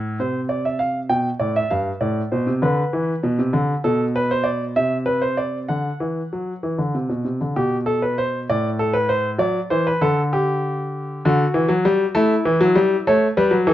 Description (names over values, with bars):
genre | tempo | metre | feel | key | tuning
classical, baroque-style two-part invention for grand piano | 65 BPM (dotted quarters) | 6/8 | straight | unclear | A4 = 436 Hz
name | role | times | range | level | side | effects
warm baby grand piano | solo | 0.0-13.7 s | G2 to G5 | -18 LUFS | equal | none
room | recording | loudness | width
light reverb | worn, warbling old tape, cassette tape, warbly pitch drift, nothing above 7.5 kHz | -18 LUFS | side -13 dB against mid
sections
0.2-7.6 A section; 7.6-13.7 B section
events
none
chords
0.2 Cadd11; 1.1 G; 2.0 Amadd11; 2.9 E5; 3.8 Bm7; 4.8 Cmaj9; 5.7 D; 7.6 G/B; 8.5 D5/A; 9.4 D7; 10.3 G5/D; 11.2 D; 12.2 A5; 13.1 A7